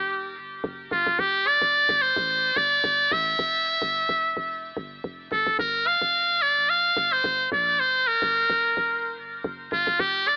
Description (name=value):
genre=amapiano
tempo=109 BPM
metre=4/4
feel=swing 55% on 16ths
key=unclear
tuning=A4 = 436 Hz
part: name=trumpet with metal mute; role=melody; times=0.0-10.4 s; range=F4 to F5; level=-24 LUFS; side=equal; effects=cassette tape, tape echo
part: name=deep log drum bass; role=bass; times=0.0-10.4 s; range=F1 to Bb1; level=-38 LUFS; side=equal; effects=none
room=light reverb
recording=home recording on cassette, telephone sound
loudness=-23 LUFS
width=mono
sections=0.0-10.4 A section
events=none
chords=0.0 G7(no3); 0.6 Fsus2; 1.2 Fmaj9; 5.6 Gm7; 9.4 Fsus2